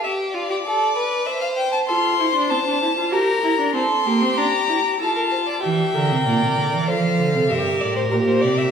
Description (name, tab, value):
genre	classical, baroque-style fugue for string quartet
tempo	97 BPM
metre	3/4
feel	straight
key	unclear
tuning	A4 = 436 Hz
part	rich violin	melody	0.0-8.7 s	Bb4 to C6	-22 LUFS	left 5 dB	none
part	rich violin	second line	0.0-8.7 s	F4 to E5	-24 LUFS	right 1 dB	none
part	dark viola	accompaniment	1.9-8.7 s	Bb3 to Bb4	-22 LUFS	right 2 dB	none
part	rich cello	bass	5.6-8.7 s	G2 to F3	-21 LUFS	right 4 dB	none
room	wet recital hall reverb, RT60 1.5 s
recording	recorded in a church or concert hall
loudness	-17 LUFS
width	side -7 dB against mid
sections	0.0-5.6 A section; 5.6-8.7 B section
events	none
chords	0.0 G; 1.3 C; 1.9 F; 3.1 Gm; 3.8 C; 5.0 F; 5.6 C7; 6.9 F; 7.5 Gm